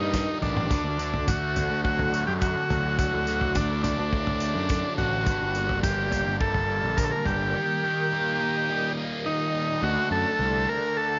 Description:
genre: psychedelic rock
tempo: 105 BPM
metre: 4/4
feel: straight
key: unclear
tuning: A4 = 440 Hz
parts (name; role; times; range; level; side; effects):
- combo organ; melody; 0.0-11.2 s; D4 to Bb4; -29 LUFS; equal; slapback echo
- string machine, full ensemble; sustained chords; 0.0-11.2 s; G3 to F#5; -39 LUFS; equal; phaser, ensemble chorus
- fuzz guitar; riff; 0.0-11.2 s; G2 to D4; -34 LUFS; equal; distortion, phaser
- fuzz picked electric bass; bass; 0.0-10.7 s; G1 to G2; -32 LUFS; equal; overdrive
- damped 70s drum kit; drums; 0.1-7.4 s; kick drum, snare drum, toms; -31 LUFS; equal; none
- tambourine; percussion; 0.1-7.3 s; none; -43 LUFS; equal; none
room: light reverb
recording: nothing above 7.5 kHz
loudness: -26 LUFS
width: mono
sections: 0.0-9.8 A section; 9.8-11.2 B section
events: none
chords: 0.0 Eb; 0.7 D; 5.3 Gm; 7.5 Eb; 9.8 D

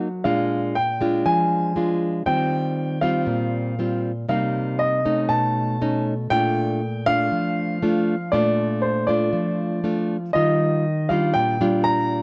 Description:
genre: bossa nova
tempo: 119 BPM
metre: 4/4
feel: straight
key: Bb major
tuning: A4 = 437 Hz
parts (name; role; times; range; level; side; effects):
- nylon-string guitar; accompaniment; 0.0-12.2 s; Bb2 to F4; -24 LUFS; equal; none
- warm concert grand piano; melody; 0.2-12.2 s; C5 to Bb5; -26 LUFS; equal; none
room: light reverb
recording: worn, warbling old tape, cassette tape, warbly pitch drift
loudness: -22 LUFS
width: mono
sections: 0.0-10.3 A section; 10.3-12.2 B section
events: none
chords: 0.2 Bb7; 2.3 Eb69; 4.3 Cm7; 5.3 B9; 6.3 Bbmaj7; 10.3 Ebmaj9

